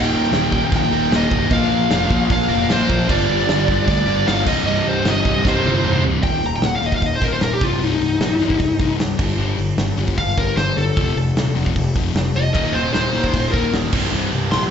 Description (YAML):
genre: hard rock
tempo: 152 BPM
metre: 4/4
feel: straight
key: C minor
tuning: A4 = 440 Hz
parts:
  - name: smooth overdriven lead guitar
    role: melody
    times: 0.0-14.6 s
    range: Eb4 to C6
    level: -21 LUFS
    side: left 1 dB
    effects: slapback echo, digital delay
  - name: cranked stack guitar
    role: riff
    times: 0.0-6.0, 12.5-14.7 s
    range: C2 to Bb4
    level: -24 LUFS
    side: right 1 dB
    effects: overdrive
  - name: sludgy distorted guitar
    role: riff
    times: 0.0-14.7 s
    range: C2 to Bb3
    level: -23 LUFS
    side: left 6 dB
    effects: overdrive
  - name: sludgy distorted guitar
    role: riff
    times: 0.0-6.2 s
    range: C2 to Bb3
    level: -25 LUFS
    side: right 9 dB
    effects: overdrive, slapback echo
  - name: fuzz picked electric bass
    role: bass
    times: 0.0-14.7 s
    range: C1 to D2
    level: -23 LUFS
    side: right 1 dB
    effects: overdrive
  - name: big rock drum kit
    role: drums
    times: 0.2-14.6 s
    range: crash cymbal, hi-hat, kick drum, snare drum, toms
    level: -22 LUFS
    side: right 1 dB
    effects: none
room: light reverb, small room ambience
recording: live gig heard through the venue's PA, club ambience, nothing above 7.9 kHz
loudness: -16 LUFS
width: side -7 dB against mid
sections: 0.0-6.2 A section; 6.2-14.7 B section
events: drum fill 5.4-6.2; lead electric guitar solo 6.2-14.7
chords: 0.0 Eb; 1.5 Bb; 3.1 Gm; 4.5 Cm; 6.2 Eb5; 7.6 Cm; 9.2 G5; 11.0 F5; 12.5 Eb5; 13.9 C5